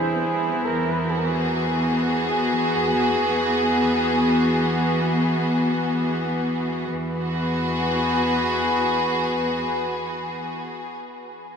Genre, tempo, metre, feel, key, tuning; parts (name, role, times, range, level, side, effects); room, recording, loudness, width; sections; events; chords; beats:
ambient; 67 BPM; 4/4; straight; E major; A4 = 440 Hz
warm flugelhorn; melody; 0.0-10.6 s; G#4 to B4; -27 LUFS; right 2 dB; tape echo
rich studio string section; sustained chords; 0.0-11.0 s; E3 to G#4; -21 LUFS; left 1 dB
clear chamber double bass section; bass; 0.0-9.6 s; E2; -39 LUFS; right 1 dB
wet huge ambient reverb, RT60 8.5 s; -20 LUFS; side -6 dB against mid
0.0-6.9 A section; 6.9-10.5 B section
fade-out on double bass section 0.0-6.9
0.0 E
0.64 1.53 2.43 | 3.32 4.22 5.11 6.01 | 6.90 7.80 8.69 9.59